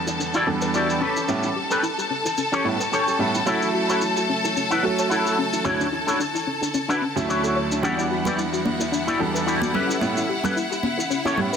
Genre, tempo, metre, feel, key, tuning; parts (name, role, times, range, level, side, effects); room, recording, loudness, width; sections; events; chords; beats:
nu-disco, nu disco; 110 BPM; 4/4; swing 55% on 16ths; A4 = 442 Hz
clear grand piano; accompaniment; 0.0-11.5 s; D2 to F#5; -26 LUFS; right 3 dB; dub echo
clear symphonic violin section; sustained chords; 0.0-11.6 s; E4 to A5; -27 LUFS; left 2 dB; low-pass filter
soft round pluck; arpeggios; 0.0-11.6 s; C#4 to C#5; -28 LUFS; left 3 dB; chorus, digital delay
electric guitar with an envelope filter; riff; 0.1-11.6 s; C#4 to D5; -25 LUFS; left 1 dB; ensemble chorus, dub echo
shaker; drums; 0.1-11.6 s; -34 LUFS; equal; low-pass filter on perc, low-pass filter on room
congas; percussion; 7.8-11.5 s; -29 LUFS; right 2 dB
moderate lush hall reverb, RT60 2.2 s; dense, heavily limited modern master; -20 LUFS; side -7 dB against mid
0.0-11.6 A section
filter sweep on synth arpeggio sound 0.0-11.6
0.0 Em9; 1.0 A9; 3.5 F#m7; 5.7 Dmaj9; 7.8 Em9; 9.7 A9
0.20 0.74 | 1.29 1.83 2.38 2.93 | 3.47 4.02 4.56 5.11 | 5.65 6.20 6.74 7.29 | 7.83 8.38 8.93 9.47 | 10.02 10.56 11.11